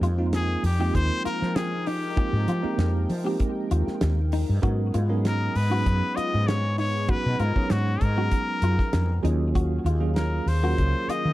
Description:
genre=electric jazz fusion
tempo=98 BPM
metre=4/4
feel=swing 53% on 16ths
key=unclear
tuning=A4 = 439 Hz
part: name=bell-like tine electric piano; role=accompaniment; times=0.0-11.3 s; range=Gb3 to Db5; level=-30 LUFS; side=right 4 dB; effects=fast stereo tremolo
part: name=chorused pulse-width pad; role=sustained chords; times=0.0-11.3 s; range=Eb3 to G5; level=-35 LUFS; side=left 1 dB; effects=none
part: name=clean electric guitar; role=stabs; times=0.0-11.3 s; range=Eb4 to G4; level=-34 LUFS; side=left 4 dB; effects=ensemble chorus, tape echo
part: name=woody fretless electric bass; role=bass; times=0.0-11.3 s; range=Db2 to F3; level=-24 LUFS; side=equal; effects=none
part: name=damped 70s drum kit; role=drums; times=0.0-11.2 s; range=hi-hat, kick drum, snare drum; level=-28 LUFS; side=equal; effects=none
part: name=trumpet with straight mute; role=melody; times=0.4-11.3 s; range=Gb4 to Eb5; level=-29 LUFS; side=left 2 dB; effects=none
room=light reverb, small room ambience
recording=dark, warm production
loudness=-22 LUFS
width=side -16 dB against mid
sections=0.0-11.3 A section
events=none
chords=0.0 Fm11; 4.6 Abm11; 9.2 Ebm11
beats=0.33 0.95 1.56 | 2.17 2.79 3.40 4.02 | 4.63 5.25 5.86 6.48 | 7.09 7.71 8.32 8.94 | 9.55 10.17 10.79

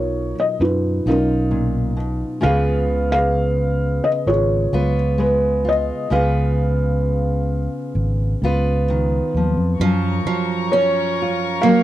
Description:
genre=acoustic folk-pop ballad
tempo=65 BPM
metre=4/4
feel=straight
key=unclear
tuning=A4 = 442 Hz
part: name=felt-muted upright piano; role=melody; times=0.0-11.8 s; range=C#4 to E#5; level=-21 LUFS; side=equal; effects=none
part: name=fingerpicked steel-string acoustic guitar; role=accompaniment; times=0.0-11.8 s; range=F#2 to B4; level=-22 LUFS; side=equal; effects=none
part: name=fretless electric bass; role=bass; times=0.0-11.8 s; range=G#1 to F#3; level=-20 LUFS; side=equal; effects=none
part: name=warm chamber string section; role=sustained chords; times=9.8-11.8 s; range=A#4 to C#6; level=-26 LUFS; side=left 6 dB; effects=none
part: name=picked acoustic archtop guitar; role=arpeggios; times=9.8-11.8 s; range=E#3 to C#4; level=-20 LUFS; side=right 7 dB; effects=none
room=light reverb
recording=dry, close 1970s-style studio recording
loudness=-17 LUFS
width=side -14 dB against mid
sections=0.0-9.8 A section; 9.8-11.8 B section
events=none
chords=0.0 Bmaj9#11; 2.4 C#7; 9.8 F#maj7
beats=0.61 1.52 | 2.44 3.36 4.28 5.19 | 6.11 7.03 7.95 8.88 | 9.80 10.72 11.64

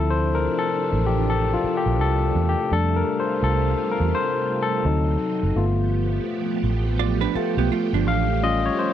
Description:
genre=R&B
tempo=84 BPM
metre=4/4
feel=swing 62% on 16ths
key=unclear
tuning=A4 = 440 Hz
part: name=barky tine electric piano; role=accompaniment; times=0.0-8.9 s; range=F3 to E#5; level=-23 LUFS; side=left 5 dB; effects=none
part: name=string machine, full ensemble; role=sustained chords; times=0.0-8.9 s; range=C3 to G4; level=-28 LUFS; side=right 4 dB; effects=ensemble chorus
part: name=vintage muted fingered electric bass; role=bass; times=0.0-8.7 s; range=F#1 to F2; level=-22 LUFS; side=right 1 dB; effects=none
part: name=vintage hollow-body jazz guitar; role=second line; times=7.0-8.3 s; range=F3 to D5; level=-24 LUFS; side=right 22 dB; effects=none
room=little or no reverb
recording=dry, close 1970s-style studio recording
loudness=-20 LUFS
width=side -10 dB against mid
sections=0.0-8.9 A section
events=tine electric piano solo 0.0-8.9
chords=0.0 Dm7; 2.7 F69; 4.8 D7b9; 5.6 G9; 8.1 A7alt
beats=0.55 1.27 1.98 | 2.70 3.41 4.13 4.84 | 5.55 6.27 6.98 7.70 | 8.41

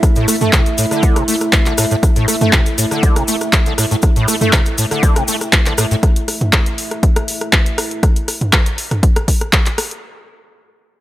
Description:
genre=acid house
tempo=120 BPM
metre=4/4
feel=straight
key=unclear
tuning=A4 = 441 Hz
part: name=dark analog pad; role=sustained chords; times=0.0-8.0 s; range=A3 to E5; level=-22 LUFS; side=right 1 dB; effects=wide subtle chorus, sidechain pumping
part: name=electronic kick drum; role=drums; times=0.0-9.6 s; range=none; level=-14 LUFS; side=equal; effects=overdrive
part: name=punchy analog drum machine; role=drums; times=0.0-10.0 s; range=handclaps, hi-hat, rim click, toms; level=-17 LUFS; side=equal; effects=overdrive
part: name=cabasa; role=percussion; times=0.0-6.0 s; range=none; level=-23 LUFS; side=left 3 dB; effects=none
part: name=liquid acid bass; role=riff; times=0.2-6.0 s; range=A2 to A3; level=-18 LUFS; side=equal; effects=overdrive, ensemble chorus, sidechain pumping, tape echo
room=light reverb, digital ambience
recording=none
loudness=-12 LUFS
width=side -15 dB against mid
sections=0.0-10.0 A section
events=drop 0.0-10.0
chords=0.0 A5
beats=| 0.03 0.53 1.03 1.53 | 2.03 2.53 3.03 3.53 | 4.03 4.53 5.03 5.53 | 6.03 6.53 7.03 7.53 | 8.03 8.53 9.03 9.53

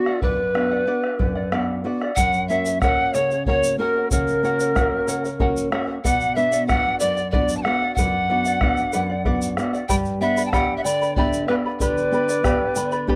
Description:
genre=andean folk, Andean ensemble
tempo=62 BPM (dotted quarters)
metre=6/8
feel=straight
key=unclear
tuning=A4 = 438 Hz
part: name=bright polished pan flute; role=melody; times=0.0-13.2 s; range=F#4 to A5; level=-24 LUFS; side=equal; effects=none
part: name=charango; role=accompaniment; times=0.0-13.2 s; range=G4 to B5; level=-30 LUFS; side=equal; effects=none
part: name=nylon-string guitar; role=accompaniment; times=0.0-13.2 s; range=F#2 to G4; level=-28 LUFS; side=equal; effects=none
part: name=bombo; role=percussion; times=0.1-13.2 s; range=none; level=-27 LUFS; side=equal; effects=none
part: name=breathy mellow quena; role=second line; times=2.2-13.2 s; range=A#4 to B5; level=-32 LUFS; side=equal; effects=none
part: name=egg shaker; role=percussion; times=2.2-13.0 s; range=none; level=-36 LUFS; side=equal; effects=none
room=little or no reverb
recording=dry, close 1970s-style studio recording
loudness=-21 LUFS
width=mono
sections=0.0-2.2 A section; 2.2-13.2 B section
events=none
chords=0.0 Bm; 2.2 F#; 6.0 Bm; 9.9 G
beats=| 0.22 1.19 | 2.17 3.14 | 4.11 5.08 | 6.04 7.01 | 7.97 8.93 | 9.89 10.85 | 11.81 12.76

